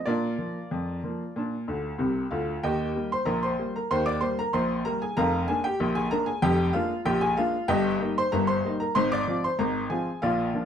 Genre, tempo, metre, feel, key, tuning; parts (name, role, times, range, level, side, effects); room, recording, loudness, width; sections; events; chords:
ragtime piano; 95 BPM; 2/4; straight; Eb major; A4 = 438 Hz
bright upright piano; solo; 0.0-10.7 s; F1 to D6; -24 LUFS; equal
wet club reverb, RT60 0.6 s; heard from further back in the room; -24 LUFS; side -8 dB against mid
0.0-2.6 A section; 2.6-10.7 B section
upright piano fill 1.7-2.6
0.1 Bb; 2.6 Eb; 5.2 Bb7/F; 7.7 Eb/G; 8.9 Fm/Ab